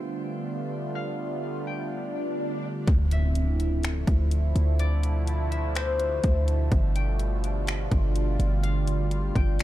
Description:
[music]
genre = hip hop, atmospheric cloud-rap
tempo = 125 BPM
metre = 4/4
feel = half-time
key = D dorian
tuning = A4 = 439 Hz
[part]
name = concert harp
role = melody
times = 0.0-9.6 s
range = C5 to G5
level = -36 LUFS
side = left 4 dB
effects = low-pass filter, tape echo
[part]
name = sweeping resonant pad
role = sustained chords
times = 0.0-9.6 s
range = B2 to F4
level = -31 LUFS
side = right 2 dB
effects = chorus, phaser, sidechain pumping, low-pass filter
[part]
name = swell and impact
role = sound effects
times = 1.5-4.8 s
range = none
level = -36 LUFS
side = equal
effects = none
[part]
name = warm 808-style bass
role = bass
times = 2.9-9.6 s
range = G1 to D2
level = -24 LUFS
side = equal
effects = none
[part]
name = trap drum kit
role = drums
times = 2.9-9.6 s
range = finger snaps, hi-hat, kick drum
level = -26 LUFS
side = equal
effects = none
[sound]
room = little or no reverb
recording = dark, warm production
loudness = -24 LUFS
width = side -14 dB against mid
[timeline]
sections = 0.0-2.9 A section; 2.9-9.6 B section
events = swell 1.5-2.9; impact 2.9-4.8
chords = 0.0 G9; 2.9 Dm9; 6.7 G9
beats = 0.00 0.47 | 0.95 1.44 1.92 2.40 | 2.88 3.35 3.83 4.32 | 4.79 5.28 5.75 6.24 | 6.71 7.20 7.67 8.15 | 8.63 9.12 9.60

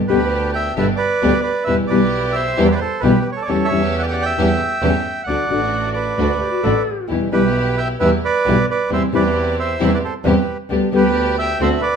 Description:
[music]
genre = tango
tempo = 133 BPM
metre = 4/4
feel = rubato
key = G major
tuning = A4 = 440 Hz
[part]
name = nylon-string guitar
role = accompaniment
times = 0.0-11.7 s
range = B2 to G4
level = -18 LUFS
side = left 3 dB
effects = none
[part]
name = rich symphonic string section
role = stabs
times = 0.0-11.8 s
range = A3 to G4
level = -27 LUFS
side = right 1 dB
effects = none
[part]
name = warm double bass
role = bass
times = 0.0-11.8 s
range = G1 to E2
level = -22 LUFS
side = right 2 dB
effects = none
[part]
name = bandoneon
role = melody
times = 0.1-12.0 s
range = G4 to G5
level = -20 LUFS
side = right 3 dB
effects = none
[part]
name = mellow clarinet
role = second line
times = 6.4-7.2 s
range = F#4 to A4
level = -22 LUFS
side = left 7 dB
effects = none
[sound]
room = moderate large studio reverb, RT60 0.9 s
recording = minimal, uncompressed stereo recording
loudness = -15 LUFS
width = side -7 dB against mid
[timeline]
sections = 0.0-12.0 A section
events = none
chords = 0.0 G; 1.7 Em; 3.5 A7/E; 5.3 D; 7.1 Em; 8.9 C/E; 10.7 G/D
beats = 0.31 0.77 1.22 | 1.68 2.13 2.58 3.03 | 3.48 3.93 4.38 4.83 | 5.28 5.72 6.18 6.64 | 7.10 7.55 8.01 8.46 | 8.91 9.35 9.80 10.25 | 10.70 11.15 11.60

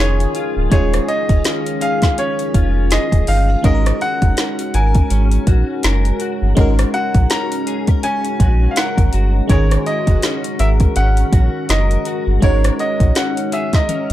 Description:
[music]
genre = contemporary R&B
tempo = 82 BPM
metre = 4/4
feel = swing 58% on 16ths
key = unclear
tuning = A4 = 440 Hz
[part]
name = clear baby grand piano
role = melody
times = 0.0-14.1 s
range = C#5 to A#5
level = -22 LUFS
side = right 1 dB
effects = digital delay
[part]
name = FM electric piano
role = accompaniment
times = 0.0-14.1 s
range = D#3 to C#5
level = -24 LUFS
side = right 1 dB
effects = chorus, phaser
[part]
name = deep dark ambient pad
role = sustained chords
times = 0.0-14.1 s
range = D#3 to G#4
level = -26 LUFS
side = left 1 dB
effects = chorus, built-in reverb, sidechain pumping
[part]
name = direct-recorded clean electric guitar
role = arpeggios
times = 0.0-14.1 s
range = D#3 to A#4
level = -26 LUFS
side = left 6 dB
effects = ensemble chorus, digital delay
[part]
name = warm sub bass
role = bass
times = 0.0-14.1 s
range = D1 to A#1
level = -15 LUFS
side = equal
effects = none
[part]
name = smooth R&B drum kit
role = drums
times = 0.2-14.1 s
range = hi-hat, kick drum, rim click, snare drum, toms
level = -16 LUFS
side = equal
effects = none
[part]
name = concert harp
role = texture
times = 1.8-3.5, 8.0-9.7 s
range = E#5 to G#5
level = -33 LUFS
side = left 5 dB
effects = none
[sound]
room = digital ambience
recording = dark, warm production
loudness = -13 LUFS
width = side -14 dB against mid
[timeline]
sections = 0.0-14.1 A section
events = drum fill 13.9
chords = 0.0 D#9sus4; 3.6 G#9sus4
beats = | 0.71 1.45 2.18 2.91 | 3.64 4.37 5.11 5.84 | 6.57 7.30 8.03 8.76 | 9.50 10.23 10.96 11.69 | 12.42 13.15 13.89

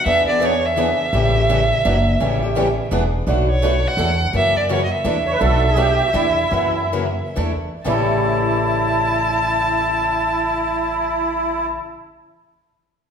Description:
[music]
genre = acoustic string swing (jazz manouche)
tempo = 118-169 BPM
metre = 3/4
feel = swing 60% on 8ths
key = A mixolydian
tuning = A4 = 444 Hz
[part]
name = rich violin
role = melody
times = 0.0-11.7 s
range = C#5 to A5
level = -20 LUFS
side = right 1 dB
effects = none
[part]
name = picked steel-string acoustic guitar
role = accompaniment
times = 0.1-11.8 s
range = A2 to A4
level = -24 LUFS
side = left 3 dB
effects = none
[part]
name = picked swing-style acoustic guitar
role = accompaniment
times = 0.1-11.8 s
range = A2 to B4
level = -26 LUFS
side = right 6 dB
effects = none
[part]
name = upright bass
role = bass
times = 0.1-11.8 s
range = E1 to F#2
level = -22 LUFS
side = equal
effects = none
[part]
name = musette accordion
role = second line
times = 5.3-11.7 s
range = E4 to C#5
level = -21 LUFS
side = right 2 dB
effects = none
[sound]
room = wet recital hall reverb, RT60 1.4 s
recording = recorded in a church or concert hall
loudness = -16 LUFS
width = side -7 dB against mid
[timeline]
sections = 0.0-3.3 A section; 3.3-7.8 B section; 7.8-10.9 C section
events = slowing down 5.4-7.8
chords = 0.1 E7; 1.1 A7; 1.8 F#aug7; 2.2 A7; 2.9 E7; 3.3 Bm9; 4.0 E7sus4; 4.3 F#7; 5.1 E7sus4; 5.4 Bm7; 6.1 E7sus4; 6.5 F#7; 7.4 E7sus4; 7.8 A7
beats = | 0.06 0.42 0.77 | 1.13 1.49 1.84 | 2.20 2.56 2.91 | 3.27 3.63 3.98 | 4.34 4.70 5.05 | 5.41 5.77 6.13 | 6.52 6.93 7.37 | 7.85 8.36 8.87 | 9.37 9.88 10.39

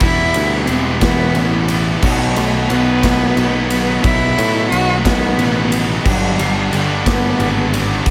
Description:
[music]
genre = quiet-loud alternative rock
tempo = 60 BPM (dotted quarters)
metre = 6/8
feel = straight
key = unclear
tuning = A4 = 441 Hz
[part]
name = clear cello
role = melody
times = 0.0-8.1 s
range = F#3 to F#4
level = -21 LUFS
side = equal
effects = none
[part]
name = crunchy overdriven guitar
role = riff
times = 0.0-8.0 s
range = G2 to E4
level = -26 LUFS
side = equal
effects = none
[part]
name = fuzz guitar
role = riff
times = 0.0-8.1 s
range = G2 to E4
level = -25 LUFS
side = equal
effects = distortion, slapback echo
[part]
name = thick fuzz guitar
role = riff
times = 0.0-8.1 s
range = E2 to B3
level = -26 LUFS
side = equal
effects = none
[part]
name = picked electric bass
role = bass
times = 0.0-8.0 s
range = E1 to A2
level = -22 LUFS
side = equal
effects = none
[part]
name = big rock drum kit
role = drums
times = 0.0-8.1 s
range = crash cymbal, kick drum, ride cymbal, snare drum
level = -21 LUFS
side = equal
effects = none
[sound]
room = light reverb, small room ambience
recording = none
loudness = -15 LUFS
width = mono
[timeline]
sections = 0.0-8.1 A section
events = none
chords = 0.0 Em; 2.0 B7(no3); 6.1 G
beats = | 0.01 1.02 | 2.03 3.04 | 4.04 5.05 | 6.05 7.06 | 8.06

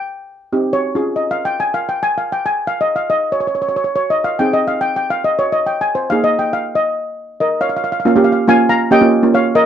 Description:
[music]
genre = calypso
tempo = 140 BPM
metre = 4/4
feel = straight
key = unclear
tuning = A4 = 440 Hz
[part]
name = steel pan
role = melody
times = 0.0-9.7 s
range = Bb4 to Bb5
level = -16 LUFS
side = left 1 dB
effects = none
[part]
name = steel pan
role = accompaniment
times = 0.0-9.5 s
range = Bb3 to Ab4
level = -14 LUFS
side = right 2 dB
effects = none
[sound]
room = light reverb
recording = dry, close 1970s-style studio recording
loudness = -14 LUFS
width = side -9 dB against mid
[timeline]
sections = 0.0-7.8 A section; 7.8-9.7 B section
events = none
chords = 0.0 Abmaj7; 1.0 Db; 4.4 Ab/C; 6.1 Ebsus4; 7.8 Bbm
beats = 0.10 0.53 | 0.96 1.39 1.82 2.25 | 2.68 3.11 3.54 3.97 | 4.40 4.83 5.26 5.69 | 6.12 6.55 6.98 7.41 | 7.83 8.26 8.69 9.12 | 9.55

